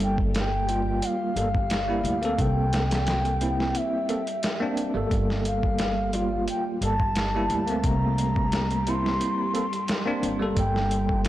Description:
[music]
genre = trip hop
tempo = 88 BPM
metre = 4/4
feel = swing 53% on 16ths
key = G dorian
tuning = A4 = 440 Hz
[part]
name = pure breathy sine lead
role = melody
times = 0.0-11.3 s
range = E5 to C6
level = -29 LUFS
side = equal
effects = chorus, vintage 12-bit sampler grit, dub echo
[part]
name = bell-like tine electric piano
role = accompaniment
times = 0.0-11.3 s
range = G3 to A4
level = -28 LUFS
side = equal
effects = medium stereo tremolo, vintage 12-bit sampler grit
[part]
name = string machine, cellos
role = sustained chords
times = 0.0-11.3 s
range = G3 to G4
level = -35 LUFS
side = right 1 dB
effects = ensemble chorus
[part]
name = upright bass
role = bass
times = 0.0-11.3 s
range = G1 to D2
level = -28 LUFS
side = equal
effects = tube saturation
[part]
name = dusty soul sampler-style drum kit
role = drums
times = 0.0-11.3 s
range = hi-hat, kick drum, snare drum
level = -29 LUFS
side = equal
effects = overdrive
[sound]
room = light reverb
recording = blown-out, overdriven recording, vinyl crackle, overdrive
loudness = -23 LUFS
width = side -14 dB against mid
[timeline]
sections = 0.0-11.3 A section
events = none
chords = 0.0 Gm7; 2.4 C7; 5.1 Gm7; 7.8 C7; 10.6 Gm

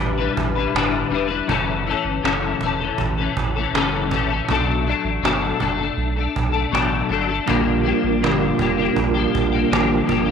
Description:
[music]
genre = indie pop, bedroom pop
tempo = 80 BPM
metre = 4/4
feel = straight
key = unclear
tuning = A4 = 440 Hz
[part]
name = clean electric guitar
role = accompaniment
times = 0.0-10.3 s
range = F#2 to B4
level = -20 LUFS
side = left 8 dB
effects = ensemble chorus, vibrato effect
[part]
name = round analog bass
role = bass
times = 0.0-10.3 s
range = E1 to B1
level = -26 LUFS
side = right 2 dB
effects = none
[part]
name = cajon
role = drums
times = 0.4-10.3 s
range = none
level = -26 LUFS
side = right 7 dB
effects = none
[part]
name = mellow tonewheel organ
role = accompaniment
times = 7.5-10.3 s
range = G3 to Bb4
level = -21 LUFS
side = right 13 dB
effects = chorus vibrato, fast rotary speaker
[sound]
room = light reverb, digital ambience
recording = 1960s-style stereo with parts hard left and right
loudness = -18 LUFS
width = side -6 dB against mid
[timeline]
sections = 0.0-10.3 A section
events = none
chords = 0.0 A9sus4; 1.5 F#m7; 4.5 Bm7; 7.5 Bb6

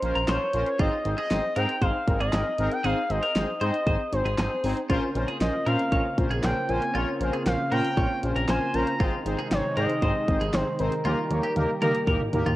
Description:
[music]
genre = synth-pop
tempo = 117 BPM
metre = 4/4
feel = straight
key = unclear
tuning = A4 = 440 Hz
[part]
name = expressive portamento lead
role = melody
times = 0.0-12.6 s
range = Bb4 to Bb5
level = -29 LUFS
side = equal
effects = chorus, slapback echo
[part]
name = analog synth brass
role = accompaniment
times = 0.0-12.5 s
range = Bb3 to Eb5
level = -30 LUFS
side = left 1 dB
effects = chorus
[part]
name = fat analog bass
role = bass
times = 0.0-12.6 s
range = Ab1 to Eb3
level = -28 LUFS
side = equal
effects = transformer saturation
[part]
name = pop drum kit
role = drums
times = 0.0-12.6 s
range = handclaps, hi-hat, kick drum, snare drum, toms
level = -28 LUFS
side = equal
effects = none
[part]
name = twelve-string electric guitar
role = second line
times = 0.2-12.6 s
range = F4 to Db5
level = -33 LUFS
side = left 1 dB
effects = spring reverb, slapback echo
[part]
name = warm analog pad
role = sustained chords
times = 4.9-12.6 s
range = C3 to G4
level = -32 LUFS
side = right 1 dB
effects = lush chorus
[sound]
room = light reverb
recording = worn, warbling old tape, cassette tape, warbly pitch drift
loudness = -23 LUFS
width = side -16 dB against mid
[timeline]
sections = 0.0-12.6 A section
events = drum fill 11.1-12.6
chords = 0.0 Bbmadd9; 0.8 Ab; 4.9 Bbmadd9; 9.0 Ab; 11.1 Eb

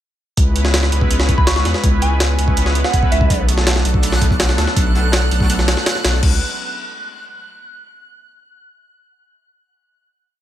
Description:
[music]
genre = drum and bass, jungle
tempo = 164 BPM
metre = 4/4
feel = straight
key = C# phrygian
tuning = A4 = 440 Hz
[part]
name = lush unison pad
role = sustained chords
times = 0.4-6.4 s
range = F#3 to B4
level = -23 LUFS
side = right 1 dB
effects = chorus
[part]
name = saturated sub bass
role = bass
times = 0.4-6.4 s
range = B1 to E2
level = -17 LUFS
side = equal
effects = tube saturation
[part]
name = jungle sampler-style drum kit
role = drums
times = 0.4-6.3 s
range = crash cymbal, hi-hat, kick drum, snare drum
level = -17 LUFS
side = equal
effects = none
[part]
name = soft synth bell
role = melody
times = 1.4-3.3 s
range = E5 to C#6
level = -24 LUFS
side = right 2 dB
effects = chorus, phaser, vintage 12-bit sampler grit, dub echo
[part]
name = crunchy breakbeat drum kit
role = drums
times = 3.3-6.1 s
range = hi-hat, snare drum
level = -29 LUFS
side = right 1 dB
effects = none
[part]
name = backwards swelling texture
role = texture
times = 3.8-6.2 s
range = F#6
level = -27 LUFS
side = right 2 dB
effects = built-in reverb
[sound]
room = digital ambience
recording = none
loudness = -13 LUFS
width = side -12 dB against mid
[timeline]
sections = 0.4-6.2 drop; 6.2-7.7 final chord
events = drop 0.4-6.2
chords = 0.4 C#m7; 3.3 Bm7; 6.2 C#m7

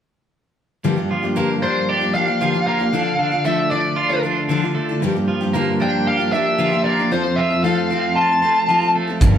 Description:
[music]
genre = folk rock and heartland rock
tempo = 115 BPM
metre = 4/4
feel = straight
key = G dorian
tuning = A4 = 440 Hz
[part]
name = picked steel-string acoustic guitar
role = accompaniment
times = 0.8-9.4 s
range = G2 to Bb4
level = -22 LUFS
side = left 4 dB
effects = none
[part]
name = twelve-string electric guitar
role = riff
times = 0.8-9.4 s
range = F2 to G4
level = -21 LUFS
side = right 3 dB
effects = harmonic tremolo
[part]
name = bluesy overdriven lead guitar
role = melody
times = 1.6-8.9 s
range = C5 to A5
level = -19 LUFS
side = left 1 dB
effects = distortion
[part]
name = picked electric bass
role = bass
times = 9.2-9.4 s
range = G1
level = -14 LUFS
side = right 2 dB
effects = none
[part]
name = cloth-damped thuddy drum kit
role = drums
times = 9.2-9.3 s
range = hi-hat, kick drum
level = -14 LUFS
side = right 1 dB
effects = none
[sound]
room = wet stone room reverb, RT60 1.3 s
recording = band playing live in one room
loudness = -16 LUFS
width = side -9 dB against mid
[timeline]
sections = 0.8-9.4 A section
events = none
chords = 0.8 Gm7; 2.9 Dm; 5.0 Gm7; 7.1 F

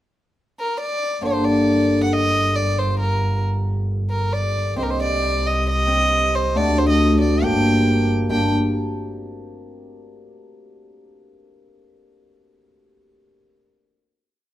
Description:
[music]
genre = klezmer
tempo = 135 BPM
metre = 4/4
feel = straight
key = G harmonic minor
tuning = A4 = 441 Hz
[part]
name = warm violin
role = melody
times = 0.6-8.5 s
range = Bb4 to G5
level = -22 LUFS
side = equal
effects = none
[part]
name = cimbalom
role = accompaniment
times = 1.2-9.9 s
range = D3 to G4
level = -21 LUFS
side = left 1 dB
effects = none
[part]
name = dark double bass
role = bass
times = 1.2-8.5 s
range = G1 to D2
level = -22 LUFS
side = right 1 dB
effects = none
[sound]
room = moderate stone room reverb, RT60 1.1 s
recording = band playing live in one room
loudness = -17 LUFS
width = side -13 dB against mid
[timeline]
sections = 0.0-1.2 pickup bar; 1.2-8.3 A section; 8.3-10.1 final chord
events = none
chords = 0.0 N.C.; 1.2 Gm; 4.8 Cm; 6.5 D; 7.4 Gm; 8.3 N.C.

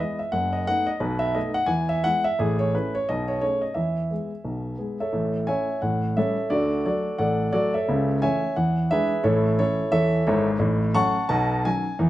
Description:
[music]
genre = jazz, stride piano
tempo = 175 BPM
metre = 4/4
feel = swing 59% on 8ths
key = E major, A major from 5.1 s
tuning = A4 = 440 Hz
[part]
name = warm grand piano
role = solo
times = 0.0-12.1 s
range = F#1 to C#6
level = -21 LUFS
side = equal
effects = none
[sound]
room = moderate stone room reverb, RT60 1.2 s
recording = band playing live in one room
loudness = -21 LUFS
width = side -15 dB against mid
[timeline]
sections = 0.0-5.1 A section; 5.1-12.1 B section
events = none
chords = 0.3 B7/F#; 1.0 B7; 1.7 E; 2.4 A; 3.1 Bsus2; 3.8 E; 5.1 A; 5.8 A7; 6.5 D; 7.9 A/C#; 8.6 E7; 9.2 A; 10.6 F#m/A; 11.3 B9

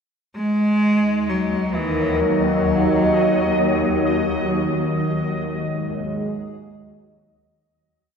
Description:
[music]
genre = dark ambient drone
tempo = 65 BPM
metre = 4/4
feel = straight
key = Eb minor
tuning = A4 = 443 Hz
[part]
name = swarming drone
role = drone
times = 1.3-7.8 s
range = Eb2 to Gb3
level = -23 LUFS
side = left 2 dB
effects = built-in reverb, phaser
[part]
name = clear cello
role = melody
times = 0.4-4.0 s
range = Fb3 to Ab3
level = -21 LUFS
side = left 1 dB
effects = tape echo
[part]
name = dark analog pad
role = sustained chords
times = 0.4-7.7 s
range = Eb3 to Eb5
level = -23 LUFS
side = right 2 dB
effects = chorus
[part]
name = bubbling stepped-filter texture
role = texture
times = 0.4-7.8 s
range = Eb5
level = -28 LUFS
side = equal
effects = chorus, built-in reverb
[sound]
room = wet plate reverb, RT60 3.4 s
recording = echo-heavy mix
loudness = -18 LUFS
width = side -6 dB against mid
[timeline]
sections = 0.4-7.7 A section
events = fade-out 4.0-7.7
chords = 0.4 Ebm; 4.0 Ab5/Eb

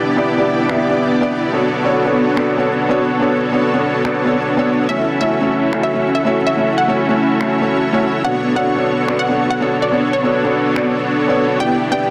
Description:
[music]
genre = future bass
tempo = 143 BPM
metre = 4/4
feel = half-time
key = B minor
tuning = A4 = 440 Hz
[part]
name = shimmering ambient pad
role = sustained chords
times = 0.0-12.1 s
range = A3 to D5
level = -28 LUFS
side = equal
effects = chorus, built-in reverb
[part]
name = dense compressed supersaw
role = riff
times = 0.0-12.1 s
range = B3 to E5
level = -20 LUFS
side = equal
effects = low-pass filter
[part]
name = felt-muted upright piano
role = accompaniment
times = 0.2-12.1 s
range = A3 to E5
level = -21 LUFS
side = equal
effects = digital delay
[part]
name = electronic finger snaps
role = drums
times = 0.7-10.8 s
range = none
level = -31 LUFS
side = equal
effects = none
[part]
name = unison pluck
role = melody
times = 4.9-12.1 s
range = C#5 to G5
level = -23 LUFS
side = equal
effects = tape echo
[sound]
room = wet lush hall reverb, RT60 1.7 s, digital ambience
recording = dense, heavily limited modern master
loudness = -16 LUFS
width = mono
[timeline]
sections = 0.0-12.1 A section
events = none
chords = 0.0 Em7; 1.5 Bm9; 4.9 F#m7; 8.2 Bm9

